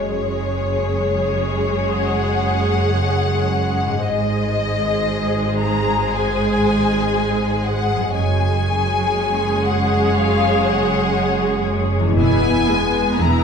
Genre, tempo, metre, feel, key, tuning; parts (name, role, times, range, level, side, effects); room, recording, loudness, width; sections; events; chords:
cinematic, emotional film score for orchestra; 58 BPM; 4/4; rubato; A4 = 440 Hz
warm symphonic violin section; melody; 0.0-13.4 s; Db5 to Bb5; -23 LUFS; left 5 dB
warm studio violin section; second line; 0.0-13.4 s; Ab4 to Db5; -26 LUFS; left 5 dB
rich symphonic viola section; accompaniment; 0.0-13.4 s; Ab3 to Ab4; -22 LUFS; right 2 dB
concert harp; arpeggios; 0.0-13.4 s; E2 to Db5; -28 LUFS; left 7 dB
rich symphonic cello section; bass; 0.0-13.4 s; E2 to Ab2; -23 LUFS; right 2 dB
warm symphonic double bass section; bass; 0.0-13.4 s; E1 to Ab1; -25 LUFS; right 4 dB
moderate scoring stage reverb, RT60 1.4 s; dark, warm production; -16 LUFS; side -6 dB against mid
0.0-13.4 A section
0.0 Gbsus2; 4.0 Ab; 8.1 Gbsus2; 12.2 E